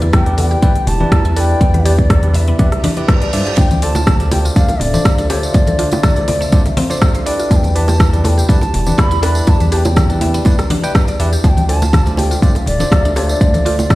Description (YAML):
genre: afro house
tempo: 122 BPM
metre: 4/4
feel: swing 53% on 16ths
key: D dorian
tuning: A4 = 440 Hz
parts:
  - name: dark analog pad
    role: sustained chords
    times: 0.0-13.9 s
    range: D4 to F5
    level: -28 LUFS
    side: right 1 dB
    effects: chorus, phaser, sidechain pumping
  - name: mallet-like synth pluck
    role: arpeggios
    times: 0.0-13.8 s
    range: A3 to E5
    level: -25 LUFS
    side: equal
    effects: chorus, sidechain pumping, tape echo
  - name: smooth synth bass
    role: bass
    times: 0.0-13.9 s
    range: D1 to A2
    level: -16 LUFS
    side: equal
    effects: sidechain pumping
  - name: deep house drum kit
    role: drums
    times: 0.0-13.9 s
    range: hi-hat, rim click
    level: -23 LUFS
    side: equal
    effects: none
  - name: congas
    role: percussion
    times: 0.0-13.9 s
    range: none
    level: -22 LUFS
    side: left 2 dB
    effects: none
  - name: bass bansuri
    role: melody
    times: 0.1-13.9 s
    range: D5 to B5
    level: -22 LUFS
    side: left 1 dB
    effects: tape echo
  - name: electronic kick drum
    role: drums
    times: 0.1-13.9 s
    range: none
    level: -12 LUFS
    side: equal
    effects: none
  - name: bell-like tine electric piano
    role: stabs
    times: 0.3-13.8 s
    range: D4 to G5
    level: -23 LUFS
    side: equal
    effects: sidechain pumping, tape echo
  - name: reverse cymbal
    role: sound effects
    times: 2.8-3.6 s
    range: none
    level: -26 LUFS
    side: right 4 dB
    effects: none
  - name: bongos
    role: percussion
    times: 3.6-13.9 s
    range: none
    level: -24 LUFS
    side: right 2 dB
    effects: none
  - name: tambourine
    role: percussion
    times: 3.6-13.9 s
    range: none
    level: -29 LUFS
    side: right 2 dB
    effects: none
room: little or no reverb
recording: played on a big sound system in a bare room, large studio reverb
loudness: -11 LUFS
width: side -18 dB against mid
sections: 0.0-13.9 A section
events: reverse cymbal 2.8-3.6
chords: 0.0 Em7; 3.6 Dm7; 7.5 Em7; 11.4 Dm7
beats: 0.13 0.62 1.12 | 1.61 2.10 2.59 3.08 | 3.58 4.07 4.56 5.05 | 5.54 6.04 6.53 7.02 | 7.51 8.00 8.49 8.99 | 9.48 9.97 10.46 10.95 | 11.45 11.94 12.43 12.92 | 13.41 13.90